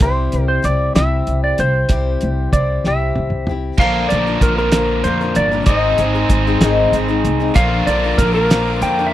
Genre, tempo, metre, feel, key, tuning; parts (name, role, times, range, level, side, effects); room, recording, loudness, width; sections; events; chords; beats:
folk rock and heartland rock; 64 BPM (dotted quarters); 6/8; straight; A4 = 440 Hz
clean lap steel guitar; melody; 0.0-9.1 s; Bb4 to G5; -19 LUFS; right 1 dB
picked old ladder-braced acoustic guitar; accompaniment; 0.0-9.1 s; Ab2 to Bb4; -21 LUFS; left 6 dB
upright bass; bass; 0.0-9.1 s; G1 to F2; -19 LUFS; equal
cloth-damped thuddy drum kit; drums; 0.0-9.0 s; crash cymbal, hi-hat, kick drum, snare drum, toms; -17 LUFS; equal
raw garage guitar; riff; 3.8-9.1 s; Bb2 to Bb4; -20 LUFS; right 2 dB; overdrive
rich chamber string section; sustained chords; 7.6-9.1 s; Bb4 to D6; -30 LUFS; left 3 dB
little or no reverb; dry, close 1970s-style studio recording; -14 LUFS; side -13 dB against mid
0.0-3.8 A section; 3.8-9.1 B section
drum fill 2.9-3.8
0.0 C; 3.8 Bb; 5.7 Ab; 7.6 Bb
| 0.02 0.96 | 1.91 2.85 | 3.79 4.74 | 5.68 6.62 | 7.57 8.51